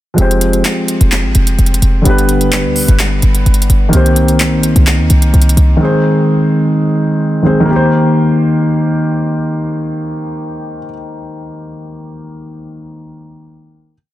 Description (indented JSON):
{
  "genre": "hip hop, trap",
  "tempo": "128 BPM",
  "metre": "4/4",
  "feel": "half-time",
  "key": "C minor",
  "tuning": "A4 = 442 Hz",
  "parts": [
    { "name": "dark concert grand piano", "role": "accompaniment", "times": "0.1-13.9 s", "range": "D3 to C5", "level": "-13 LUFS", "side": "equal", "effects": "none" },
    { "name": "short 808-style bass", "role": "bass", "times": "0.2-5.8 s", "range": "F1 to Eb2", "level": "-10 LUFS", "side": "equal", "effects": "none" },
    { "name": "trap drum kit", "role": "drums", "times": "0.2-5.7 s", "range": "handclaps, hi-hat", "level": "-18 LUFS", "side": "equal", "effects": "none" }
  ],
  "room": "digital ambience",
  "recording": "dense, heavily limited modern master",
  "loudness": "-9 LUFS",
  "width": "side -14 dB against mid",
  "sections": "0.2-7.7 hook; 7.7-11.4 final chord",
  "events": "none",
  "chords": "0.2 Fmadd9; 2.1 G; 3.9 Cm7; 5.8 Ab; 7.7 Cm7"
}